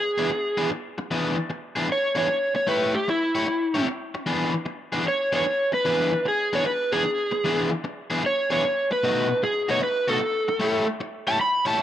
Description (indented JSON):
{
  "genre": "blues",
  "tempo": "151 BPM",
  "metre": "4/4",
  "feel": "swing 67% on 8ths",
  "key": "E mixolydian",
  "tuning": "A4 = 440 Hz",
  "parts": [
    { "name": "overdriven slide guitar", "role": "melody", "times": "0.0-11.8 s", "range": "E4 to B5", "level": "-23 LUFS", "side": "right 1 dB", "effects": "none" },
    { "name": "crunchy overdriven guitar", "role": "riff", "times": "0.2-11.8 s", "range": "B2 to C#5", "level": "-26 LUFS", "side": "left 2 dB", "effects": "spring reverb" }
  ],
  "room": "light reverb",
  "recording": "none",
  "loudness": "-22 LUFS",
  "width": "side -11 dB against mid",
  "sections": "0.0-11.8 A section",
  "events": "none",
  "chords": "0.0 E7; 2.7 A7; 4.3 E7; 9.0 B7; 10.6 A7"
}